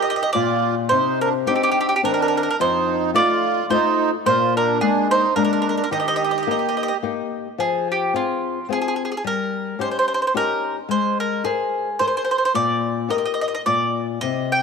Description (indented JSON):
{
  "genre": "italian folk, Italian serenade",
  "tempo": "108 BPM",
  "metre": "3/4",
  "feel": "swing 55% on 8ths",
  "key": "Eb major",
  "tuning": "A4 = 440 Hz",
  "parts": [
    { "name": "bowl-back mandolin", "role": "melody", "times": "0.0-14.6 s", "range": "F4 to G5", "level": "-21 LUFS", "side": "right 2 dB", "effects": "none" },
    { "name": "accordion", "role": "second line", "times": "0.0-7.0 s", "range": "C4 to G4", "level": "-23 LUFS", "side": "right 12 dB", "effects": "light tremolo tuning" },
    { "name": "flamenco guitar", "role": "accompaniment", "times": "0.0-14.6 s", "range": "F2 to C5", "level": "-23 LUFS", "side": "left 11 dB", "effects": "none" }
  ],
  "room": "moderate echo chamber reverb, RT60 2.2 s",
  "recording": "1960s-style stereo with parts hard left and right",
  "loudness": "-18 LUFS",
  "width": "side -5 dB against mid",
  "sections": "0.0-7.6 A section; 7.6-14.6 A section",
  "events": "none",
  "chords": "0.3 N.C.; 0.9 Cmadd9; 2.6 F7; 4.2 Bb7; 5.9 Eb; 7.6 Fm; 9.2 Eb7/G; 10.9 Abadd9; 12.5 Eb/Bb; 13.6 N.C.",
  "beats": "0.34 | 0.90 1.47 2.03 | 2.58 3.14 3.69 | 4.25 4.80 5.35 | 5.90 6.45 7.01 | 7.57 8.13 8.69 | 9.24 9.79 10.35 | 10.89 11.44 11.99 | 12.54 13.09 13.65 | 14.21"
}